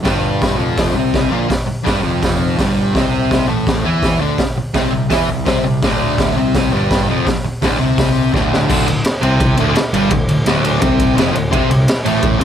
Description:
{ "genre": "garage rock duo or trio", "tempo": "167 BPM", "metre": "4/4", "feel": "straight", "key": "unclear", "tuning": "A4 = 440 Hz", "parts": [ { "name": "fuzz guitar", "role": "riff", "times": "0.0-12.4 s", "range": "D2 to E4", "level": "-16 LUFS", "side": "equal", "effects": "distortion" }, { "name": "fuzz picked electric bass", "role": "bass", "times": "0.0-12.4 s", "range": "D1 to E2", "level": "-21 LUFS", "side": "equal", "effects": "overdrive" }, { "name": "raw garage drum kit", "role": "drums", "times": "0.0-12.4 s", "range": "crash cymbal, hi-hat, kick drum, ride cymbal, snare drum", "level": "-17 LUFS", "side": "equal", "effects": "none" } ], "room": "light reverb", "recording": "none", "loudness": "-13 LUFS", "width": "side -9 dB against mid", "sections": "0.0-8.7 A section; 8.7-12.4 B section", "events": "drum fill 8.3-8.7", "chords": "0.1 Fsus24; 2.9 Amadd11; 5.8 Dm7; 11.5 Am" }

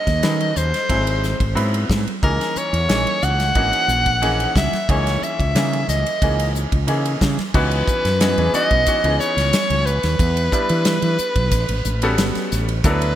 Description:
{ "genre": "electric jazz fusion", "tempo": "90 BPM", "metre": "4/4", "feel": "straight", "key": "C# dorian", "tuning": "A4 = 443 Hz", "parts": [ { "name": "breathy soprano saxophone", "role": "melody", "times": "0.0-13.2 s", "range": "A#4 to F#5", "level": "-21 LUFS", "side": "equal", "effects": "ping-pong delay" }, { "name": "bright grand piano", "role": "accompaniment", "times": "0.0-13.2 s", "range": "D#3 to B4", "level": "-24 LUFS", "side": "equal", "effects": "none" }, { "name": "fretless electric bass", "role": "bass", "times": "0.1-13.1 s", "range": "G1 to E3", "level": "-21 LUFS", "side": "equal", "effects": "none" }, { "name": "modern studio drum kit", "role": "drums", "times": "0.1-13.2 s", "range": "crash cymbal, hi-hat, kick drum, ride cymbal, snare drum", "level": "-22 LUFS", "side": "equal", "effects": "gated reverb" } ], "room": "light reverb, small room ambience", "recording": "bright 1980s-style digital production", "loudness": "-16 LUFS", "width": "side -11 dB against mid", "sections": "0.0-7.5 A section; 7.5-13.2 B section", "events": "none", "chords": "0.0 D#m7b5; 0.9 G#7alt; 2.2 C#m69; 7.5 C#m11; 10.2 Em7; 11.5 A13" }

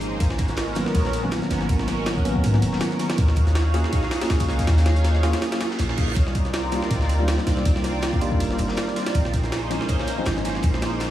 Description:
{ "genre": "drum and bass, jungle", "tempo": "161 BPM", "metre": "4/4", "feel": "swing 55% on 16ths", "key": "C phrygian", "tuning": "A4 = 437 Hz", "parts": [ { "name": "lush unison pad", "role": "sustained chords", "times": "0.0-11.1 s", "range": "Eb3 to F5", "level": "-28 LUFS", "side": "right 1 dB", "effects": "chorus, phaser" }, { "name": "tine electric piano", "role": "stabs", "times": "0.0-11.1 s", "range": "Eb3 to Ab4", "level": "-28 LUFS", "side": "left 1 dB", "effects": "overdrive, medium stereo tremolo, vintage 12-bit sampler grit, dub echo" }, { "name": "warm 808-style bass", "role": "bass", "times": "0.0-11.1 s", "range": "Eb1 to Ab2", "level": "-23 LUFS", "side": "equal", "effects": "none" }, { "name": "crunchy breakbeat drum kit", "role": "drums", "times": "0.0-11.1 s", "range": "hi-hat, snare drum", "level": "-39 LUFS", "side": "left 4 dB", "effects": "high-pass filter on hats, high-pass filter on snare, high-pass filter on room" }, { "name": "jungle sampler-style drum kit", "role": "drums", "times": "0.2-11.1 s", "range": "kick drum, ride cymbal, snare drum", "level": "-25 LUFS", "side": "equal", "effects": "none" }, { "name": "reverse cymbal", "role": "sound effects", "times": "5.6-6.2 s", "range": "none", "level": "-35 LUFS", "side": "right 6 dB", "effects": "none" } ], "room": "light reverb", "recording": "vinyl crackle, small room reverb", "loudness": "-20 LUFS", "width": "side -13 dB against mid", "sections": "0.0-11.1 A section", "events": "reverse cymbal 5.6-6.2", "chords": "0.2 Abm11; 3.2 Ebm11; 6.2 Cm11; 9.1 Bbm11" }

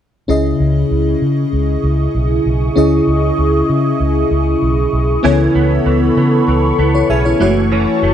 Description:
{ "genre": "pop", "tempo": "97 BPM", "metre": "4/4", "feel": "straight", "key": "C# minor", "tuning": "A4 = 443 Hz", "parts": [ { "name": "FM electric piano with soft pad layer", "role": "accompaniment", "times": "0.3-8.1 s", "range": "C#3 to E5", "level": "-15 LUFS", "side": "left 2 dB", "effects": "chorus" }, { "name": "phased analog pad", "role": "sustained chords", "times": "0.3-8.1 s", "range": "E4 to D#6", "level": "-19 LUFS", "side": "right 1 dB", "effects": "phaser, chorus" }, { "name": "vintage muted fingered electric bass", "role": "bass", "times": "0.3-8.1 s", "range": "F#1 to C#3", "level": "-16 LUFS", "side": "right 1 dB", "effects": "none" }, { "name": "direct-recorded clean electric guitar", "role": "riff", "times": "5.2-8.1 s", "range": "E3 to C#4", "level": "-19 LUFS", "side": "right 6 dB", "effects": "ensemble chorus, slapback echo" } ], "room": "light reverb", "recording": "dry, close 1970s-style studio recording", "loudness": "-12 LUFS", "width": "side -9 dB against mid", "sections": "0.3-8.1 A section", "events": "none", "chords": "0.3 C#madd9; 5.2 Aadd9/C#; 7.4 F#m7" }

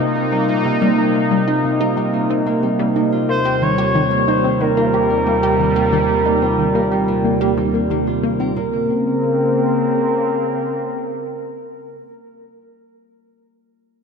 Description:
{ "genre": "ambient, sequencer-driven space music", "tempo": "91 BPM", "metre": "4/4", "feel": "straight", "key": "Bb dorian", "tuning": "A4 = 436 Hz", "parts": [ { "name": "sweeping resonant pad", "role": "sustained chords", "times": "0.0-12.0 s", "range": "Eb2 to Eb4", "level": "-19 LUFS", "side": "equal", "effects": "chorus" }, { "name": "Celtic harp", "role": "arpeggios", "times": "0.0-11.8 s", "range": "Bb2 to Bb4", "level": "-23 LUFS", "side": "right 3 dB", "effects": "auto-pan, ping-pong delay" }, { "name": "tight sequenced synth", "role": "riff", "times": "0.0-8.9 s", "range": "Bb2 to G4", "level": "-22 LUFS", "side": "left 2 dB", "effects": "chorus, ping-pong delay" }, { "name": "expressive synth lead", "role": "melody", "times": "3.3-12.0 s", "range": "Bb4 to Db5", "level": "-20 LUFS", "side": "equal", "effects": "chorus, ping-pong delay" } ], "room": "wet lush hall reverb, RT60 2.5 s", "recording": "dreamy mix soaked in reverb", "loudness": "-15 LUFS", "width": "side -5 dB against mid", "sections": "0.0-8.6 A section; 8.6-11.2 B section", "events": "none", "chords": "0.0 Cm7; 3.3 Eb6; 8.6 Bbmadd9" }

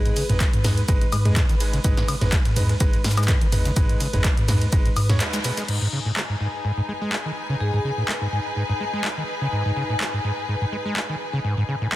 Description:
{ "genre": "acid house", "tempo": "125 BPM", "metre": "4/4", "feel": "swing 54% on 16ths", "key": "G# minor", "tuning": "A4 = 440 Hz", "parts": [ { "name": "acid bass, saw", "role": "riff", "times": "0.0-12.0 s", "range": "G#2 to G#3", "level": "-26 LUFS", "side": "equal", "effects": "overdrive, cassette tape, sidechain pumping, digital delay" }, { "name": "bright grand piano", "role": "stabs", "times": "0.0-5.6 s", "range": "G#3 to C#5", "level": "-31 LUFS", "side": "right 2 dB", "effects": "digital delay" }, { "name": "rich studio string section", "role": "texture", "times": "0.0-12.0 s", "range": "D#4 to G#5", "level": "-30 LUFS", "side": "left 2 dB", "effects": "sidechain pumping" }, { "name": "vibraphone with hard mallets", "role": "melody", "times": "0.1, 7.6-7.8 s", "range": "G#4", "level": "-33 LUFS", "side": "equal", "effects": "tape echo" }, { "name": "punchy analog drum machine", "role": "drums", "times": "0.1-12.0 s", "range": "crash cymbal, handclaps, hi-hat, ride cymbal, snare drum, toms, woodblock", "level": "-26 LUFS", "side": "equal", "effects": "none" }, { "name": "breakbeat sampler-style drum kit", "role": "drums", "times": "0.2-5.7 s", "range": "hi-hat, shaker, snare drum", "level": "-35 LUFS", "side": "left 2 dB", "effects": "none" }, { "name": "warm sub bass", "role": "bass", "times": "0.3-5.2 s", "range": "G#1 to G#2", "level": "-23 LUFS", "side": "equal", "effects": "sidechain pumping" }, { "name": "electronic kick drum", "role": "drums", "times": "0.4-4.8 s", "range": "none", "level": "-21 LUFS", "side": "equal", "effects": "none" } ], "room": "light reverb, digital ambience", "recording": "dense, heavily limited modern master", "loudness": "-20 LUFS", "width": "side -15 dB against mid", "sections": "0.0-5.7 A section; 5.7-12.0 B section", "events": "drop 0.0-5.7; break 5.2-5.7; band accent 5.2", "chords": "0.0 G#m" }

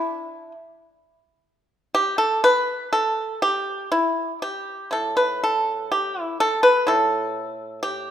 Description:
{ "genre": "chinese traditional, Chinese solo plucked strings", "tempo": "61 BPM", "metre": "2/4", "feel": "uneven beats, rubato", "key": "unclear", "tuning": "A4 = 440 Hz", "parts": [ { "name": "pipa", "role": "solo", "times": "0.0-8.1 s", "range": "A2 to B4", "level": "-20 LUFS", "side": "equal", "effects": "none" } ], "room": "light reverb", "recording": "minimal, uncompressed stereo recording", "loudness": "-20 LUFS", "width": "side -10 dB against mid", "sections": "0.0-8.1 A section", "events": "none", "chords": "none" }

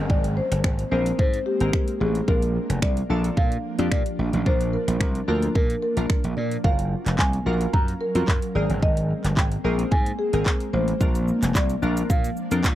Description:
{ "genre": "dance-pop", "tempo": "110 BPM", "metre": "4/4", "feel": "straight", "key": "Bb major", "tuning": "A4 = 440 Hz", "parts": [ { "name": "marimba with soft mallets", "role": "melody", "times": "0.0-12.6 s", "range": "G4 to Bb5", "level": "-28 LUFS", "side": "left 1 dB", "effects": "tape echo" }, { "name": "glassy digital keys", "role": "accompaniment", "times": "0.0-12.8 s", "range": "Ab3 to Bb4", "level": "-31 LUFS", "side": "left 1 dB", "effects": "chorus, phaser" }, { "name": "ethereal airy pad", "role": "sustained chords", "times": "0.0-12.8 s", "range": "F3 to F5", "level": "-31 LUFS", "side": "equal", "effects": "ensemble chorus, built-in reverb, sidechain pumping" }, { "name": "gritty slap bass", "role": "bass", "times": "0.0-12.7 s", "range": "F1 to Bb2", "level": "-24 LUFS", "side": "equal", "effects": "overdrive, sidechain pumping" }, { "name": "downlifter", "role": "sound effects", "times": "0.0-2.3 s", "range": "none", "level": "-46 LUFS", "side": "right 1 dB", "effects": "none" }, { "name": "pop drum kit", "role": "drums", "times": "0.1-12.8 s", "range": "finger snaps, handclaps, hi-hat, kick drum, shaker", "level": "-22 LUFS", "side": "equal", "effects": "none" } ], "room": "little or no reverb", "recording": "dry, close 1970s-style studio recording", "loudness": "-20 LUFS", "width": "side -13 dB against mid", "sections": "0.0-12.8 A section", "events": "none", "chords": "0.0 Abadd9; 2.3 Bb; 6.6 Gbmaj7; 8.6 Abadd9; 11.0 Bb" }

